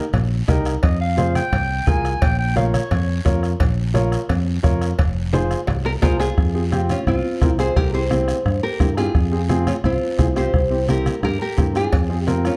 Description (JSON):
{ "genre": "latin, cumbia", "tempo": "173 BPM", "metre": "4/4", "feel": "straight", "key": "F minor, F harmonic minor from 6.4 s", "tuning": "A4 = 438 Hz", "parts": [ { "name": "warm upright piano", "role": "accompaniment", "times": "0.0-12.5 s", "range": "C4 to Db5", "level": "-27 LUFS", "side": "equal", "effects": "none" }, { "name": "fingered electric bass", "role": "bass", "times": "0.1-12.5 s", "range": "F1 to G2", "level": "-24 LUFS", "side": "equal", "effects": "none" }, { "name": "bombo", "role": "percussion", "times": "0.1-12.6 s", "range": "none", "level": "-24 LUFS", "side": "equal", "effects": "none" }, { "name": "congas", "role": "percussion", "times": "0.1-12.4 s", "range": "none", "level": "-28 LUFS", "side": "equal", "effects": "none" }, { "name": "cowbell and timbales", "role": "percussion", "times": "0.1-6.3, 11.9-12.1 s", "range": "none", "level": "-32 LUFS", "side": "equal", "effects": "none" }, { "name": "guiro", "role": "percussion", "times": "0.1-12.6 s", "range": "none", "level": "-42 LUFS", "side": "equal", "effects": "none" }, { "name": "warm clarinet", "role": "second line", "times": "0.8-3.4 s", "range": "Db5 to Ab5", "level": "-27 LUFS", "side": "equal", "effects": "none" }, { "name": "nylon-string guitar", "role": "melody", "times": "5.9-12.6 s", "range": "C4 to C5", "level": "-25 LUFS", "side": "equal", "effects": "none" } ], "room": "moderate large studio reverb, RT60 0.8 s", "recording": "dark, warm production", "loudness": "-19 LUFS", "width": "mono", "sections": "0.0-6.4 A section; 6.4-12.6 B section", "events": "clarinet solo 0.0-6.4; drum fill 5.3-6.4", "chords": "0.0 Eb; 0.8 Fm; 2.2 Bbm; 5.0 Fm; 7.8 C7; 9.2 Fm; 10.5 C7; 11.9 Fm", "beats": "0.14 0.48 | 0.83 1.18 1.52 1.87 | 2.22 2.56 2.91 3.26 | 3.60 3.95 4.29 4.64 | 4.99 5.33 5.68 6.03 | 6.37 6.72 7.07 7.42 | 7.76 8.11 8.46 8.80 | 9.15 9.50 9.84 10.19 | 10.54 10.89 11.23 11.58 | 11.93 12.27" }